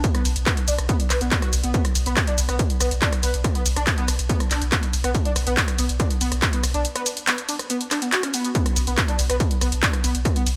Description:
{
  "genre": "driving peak-time techno",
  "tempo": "141 BPM",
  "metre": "4/4",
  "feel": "straight",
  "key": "B minor",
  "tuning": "A4 = 440 Hz",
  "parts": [
    { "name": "saturated sub bass", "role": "bass", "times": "0.0-10.6 s", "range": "B1", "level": "-28 LUFS", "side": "equal", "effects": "overdrive, sidechain pumping, low-pass filter" },
    { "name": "electronic kick drum", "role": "drums", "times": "0.0-10.3 s", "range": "none", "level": "-25 LUFS", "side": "equal", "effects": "overdrive" },
    { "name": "punchy analog drum machine", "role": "drums", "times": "0.0-10.6 s", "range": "handclaps, hi-hat, ride cymbal, rim click, shaker", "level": "-27 LUFS", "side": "equal", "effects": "sidechain pumping on hats, sidechain pumping on cymbals, sidechain pumping on perc" },
    { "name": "overdriven synth lead", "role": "riff", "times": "0.1-10.4 s", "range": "B3 to B4", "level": "-30 LUFS", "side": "equal", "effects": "distortion, tube saturation, ensemble chorus, sidechain pumping, delay" }
  ],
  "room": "digital ambience",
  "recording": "none",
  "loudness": "-22 LUFS",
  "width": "mono",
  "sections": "0.0-8.6 A section; 8.6-10.6 A section",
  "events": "drop 0.0-8.6, 8.6-10.6",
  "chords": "0.0 B5"
}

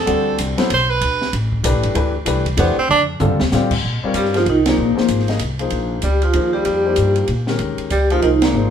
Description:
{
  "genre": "modal jazz",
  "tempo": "191 BPM",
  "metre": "3/4",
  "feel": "swing 63% on 8ths",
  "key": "Bb dorian from 3.8 s",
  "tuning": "A4 = 440 Hz",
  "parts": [
    { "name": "clear tenor saxophone", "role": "second line", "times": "0.0-8.7 s", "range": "Bb2 to C5", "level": "-20 LUFS", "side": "right 4 dB", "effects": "none" },
    { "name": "upright bass", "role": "bass", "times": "0.0-8.7 s", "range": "G1 to Bb2", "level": "-20 LUFS", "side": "equal", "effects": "none" },
    { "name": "warm grand piano", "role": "accompaniment", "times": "0.1-8.7 s", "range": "D3 to Eb5", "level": "-21 LUFS", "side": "left 4 dB", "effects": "none" },
    { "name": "open jazz drum kit", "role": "drums", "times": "0.1-8.5 s", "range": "crash cymbal, hi-hat, kick drum, ride cymbal, snare drum, toms", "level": "-24 LUFS", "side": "equal", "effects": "none" },
    { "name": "vibraphone with medium mallets", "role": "melody", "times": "4.2-8.7 s", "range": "Bb3 to G4", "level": "-17 LUFS", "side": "equal", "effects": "none" }
  ],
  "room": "moderate studio reverb, RT60 0.7 s",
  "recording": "heard from further back in the room",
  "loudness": "-15 LUFS",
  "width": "side -8 dB against mid",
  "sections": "0.0-3.8 A section; 3.8-8.7 B section",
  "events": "tenor saxophone solo 0.0-3.8; drum fill 2.9-3.5; band accent 4.6, 8.4",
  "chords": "0.1 D13sus4; 2.9 F69; 3.8 Bb13sus4"
}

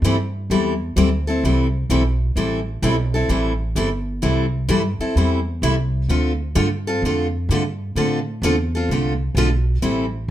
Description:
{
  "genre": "acoustic string swing (jazz manouche)",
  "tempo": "129 BPM",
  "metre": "4/4",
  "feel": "swing 66% on 8ths",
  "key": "unclear",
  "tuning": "A4 = 440 Hz",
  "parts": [
    { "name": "picked steel-string acoustic guitar", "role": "accompaniment", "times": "0.0-10.1 s", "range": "D3 to A4", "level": "-20 LUFS", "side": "left 1 dB", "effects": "none" },
    { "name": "upright bass", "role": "bass", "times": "0.0-10.3 s", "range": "G1 to A2", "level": "-21 LUFS", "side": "right 1 dB", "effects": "none" }
  ],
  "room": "moderate studio reverb, RT60 0.8 s",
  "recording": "none",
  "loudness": "-18 LUFS",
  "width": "side -12 dB against mid",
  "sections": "0.0-10.3 A section",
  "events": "none",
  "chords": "0.0 Am9; 6.1 Dm9"
}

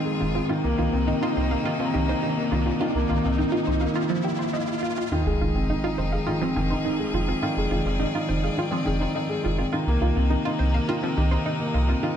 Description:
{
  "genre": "piano and strings electronica",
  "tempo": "104 BPM",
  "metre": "4/4",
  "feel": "straight",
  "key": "unclear",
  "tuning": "A4 = 441 Hz",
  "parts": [
    { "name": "bright string quartet", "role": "sustained chords", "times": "0.0-12.2 s", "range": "C3 to D5", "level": "-32 LUFS", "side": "left 2 dB", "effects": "none" },
    { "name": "analog pluck", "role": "arpeggios", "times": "0.0-12.1 s", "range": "F3 to F5", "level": "-30 LUFS", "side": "right 2 dB", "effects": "chorus, phaser, digital delay" },
    { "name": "felt-muted upright piano", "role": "riff", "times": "0.0-12.2 s", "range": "Eb3 to Eb4", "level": "-25 LUFS", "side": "left 1 dB", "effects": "digital delay" },
    { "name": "riser, swell and sub drop", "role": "sound effects", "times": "0.3-7.4 s", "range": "none", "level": "-33 LUFS", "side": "equal", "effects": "none" },
    { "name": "round analog bass", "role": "bass", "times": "0.2-11.9 s", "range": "F1 to C2", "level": "-25 LUFS", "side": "equal", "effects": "none" }
  ],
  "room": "moderate scoring stage reverb, RT60 1.6 s, small room ambience",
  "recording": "none",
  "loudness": "-22 LUFS",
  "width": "side -8 dB against mid",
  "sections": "0.0-5.1 A section; 5.1-12.2 B section",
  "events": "build-up 0.0-5.1; riser 0.3-5.1; break 4.0-5.1; swell 4.0-5.1; drop 5.1-12.2; impact 5.1-7.4",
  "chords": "0.0 Fm7; 0.5 Cm7; 5.1 Fm7; 9.7 Cm7"
}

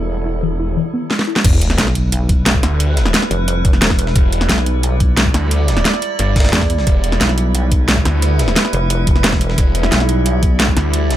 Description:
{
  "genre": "dark technical drum and bass",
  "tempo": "177 BPM",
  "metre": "4/4",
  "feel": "straight",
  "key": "E phrygian",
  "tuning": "A4 = 442 Hz",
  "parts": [
    { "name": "metallic inharmonic drone", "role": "sustained chords", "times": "0.0-11.2 s", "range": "G3 to D5", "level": "-22 LUFS", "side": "right 2 dB", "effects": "chorus, built-in reverb, sidechain pumping" },
    { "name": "snarling distorted saw bass", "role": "bass", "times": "0.0-11.2 s", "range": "E1 to D2", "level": "-17 LUFS", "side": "equal", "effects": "distortion, overdrive, sidechain pumping" },
    { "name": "warbly dusty pluck", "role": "arpeggios", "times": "0.3-1.4 s", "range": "E3 to E4", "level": "-22 LUFS", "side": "left 5 dB", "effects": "chorus, sidechain pumping, tape echo" },
    { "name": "dubstep drum kit", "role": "drums", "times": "1.1-11.2 s", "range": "crash cymbal, hi-hat, snare drum", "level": "-17 LUFS", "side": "equal", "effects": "none" },
    { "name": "breakbeat sampler-style drum kit", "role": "drums", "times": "1.4-11.2 s", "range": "hi-hat, snare drum", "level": "-26 LUFS", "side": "equal", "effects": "none" },
    { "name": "electronic kick drum", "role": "drums", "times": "1.4-10.7 s", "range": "none", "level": "-14 LUFS", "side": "equal", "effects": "none" },
    { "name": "sub drop", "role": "sound effects", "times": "1.4-2.8 s", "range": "none", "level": "-20 LUFS", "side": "equal", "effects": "none" },
    { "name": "pulsing pluck wobble bass", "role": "bass", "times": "1.8-10.8 s", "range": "E1 to E2", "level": "-17 LUFS", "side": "equal", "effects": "chorus" }
  ],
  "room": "little or no reverb",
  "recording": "none",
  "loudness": "-12 LUFS",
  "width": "side -12 dB against mid",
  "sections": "0.0-1.4 A section; 1.4-11.2 B section",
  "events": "drum fill 1.1-1.4; drop 1.4-11.2; impact 1.4-2.8",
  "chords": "0.0 Em"
}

